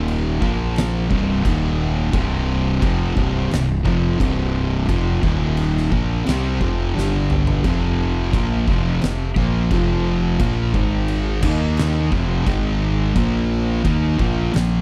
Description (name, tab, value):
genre	stoner and doom metal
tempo	87 BPM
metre	4/4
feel	straight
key	C minor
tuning	A4 = 437 Hz
part	fuzz guitar	riff	0.0-14.8 s	C2 to Eb4	-29 LUFS	equal	distortion
part	thick fuzz guitar	riff	0.0-14.8 s	C2 to Eb4	-28 LUFS	equal	distortion
part	thick fuzz guitar	riff	0.0-14.8 s	C2 to Eb4	-26 LUFS	equal	distortion
part	fuzz fingered electric bass	bass	0.0-14.8 s	C1 to Eb2	-25 LUFS	equal	overdrive
part	oversized low-tuned drum kit	drums	0.1-14.7 s	crash cymbal, kick drum, snare drum, toms	-26 LUFS	equal	none
room	little or no reverb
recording	none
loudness	-20 LUFS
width	mono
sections	0.0-14.8 A section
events	drum fill 7.0-7.6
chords	0.4 Bb5; 1.1 C5; 1.5 Eb5; 2.1 C5; 5.2 Eb5; 5.9 C5; 7.0 G5; 7.6 F5; 10.7 Ab5; 11.4 Eb5; 12.1 F5; 12.5 Ab5; 13.2 Bb5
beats	0.08 0.77 1.45 | 2.14 2.82 3.51 4.20 | 4.88 5.57 6.26 6.95 | 7.64 8.33 9.02 9.71 | 10.40 11.09 11.78 12.47 | 13.16 13.85 14.54